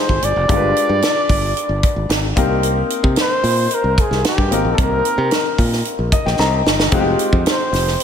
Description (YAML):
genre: polished 1980s jazz-funk pop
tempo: 112 BPM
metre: 4/4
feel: straight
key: unclear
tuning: A4 = 440 Hz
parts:
  - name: breathy flugelhorn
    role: melody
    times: 0.0-8.0 s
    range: G4 to D5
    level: -20 LUFS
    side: equal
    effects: slapback echo, ping-pong delay
  - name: clear grand piano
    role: accompaniment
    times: 0.0-8.0 s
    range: G3 to Bb5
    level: -21 LUFS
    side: left 4 dB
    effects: lush chorus, slapback echo
  - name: modern bright fingered electric bass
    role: bass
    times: 0.1-7.9 s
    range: F1 to C3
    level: -20 LUFS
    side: equal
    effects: none
  - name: tight funk drum kit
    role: drums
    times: 0.1-8.0 s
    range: hi-hat, kick drum, snare drum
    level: -18 LUFS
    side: right 1 dB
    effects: none
room: moderate concert hall reverb, RT60 2.2 s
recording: big arena sound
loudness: -14 LUFS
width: side -8 dB against mid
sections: 0.0-8.0 A section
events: grand piano fill 5.9-6.9; drum fill 6.4-6.9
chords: 0.5 G7b9; 2.4 Cm7; 6.9 Fm9